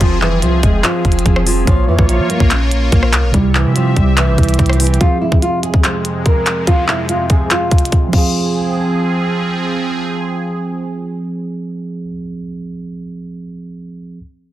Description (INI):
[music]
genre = hip hop, trap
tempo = 144 BPM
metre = 4/4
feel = half-time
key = F harmonic minor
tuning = A4 = 440 Hz
[part]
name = nylon-string guitar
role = melody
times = 0.0-9.6 s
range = E3 to C5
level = -18 LUFS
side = equal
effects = none
[part]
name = mellow tine electric piano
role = accompaniment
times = 0.0-14.2 s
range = C3 to Db5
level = -21 LUFS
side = right 3 dB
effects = none
[part]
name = sweeping resonant pad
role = sustained chords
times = 0.0-12.1 s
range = F2 to E5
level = -23 LUFS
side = left 1 dB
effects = chorus
[part]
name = clean 808-style bass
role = bass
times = 0.0-5.0 s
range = F1 to F3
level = -16 LUFS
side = equal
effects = none
[part]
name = minimal click drum kit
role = drums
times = 0.0-8.2 s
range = crash cymbal, handclaps, hi-hat, kick drum, rim click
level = -14 LUFS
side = equal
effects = none
[sound]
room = little or no reverb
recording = dense, heavily limited modern master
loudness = -12 LUFS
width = side -13 dB against mid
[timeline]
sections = 0.0-5.0 A section; 5.0-8.3 B section; 8.3-11.7 C section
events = none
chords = 0.0 Fm; 1.7 Bbm; 3.3 C; 5.0 Fm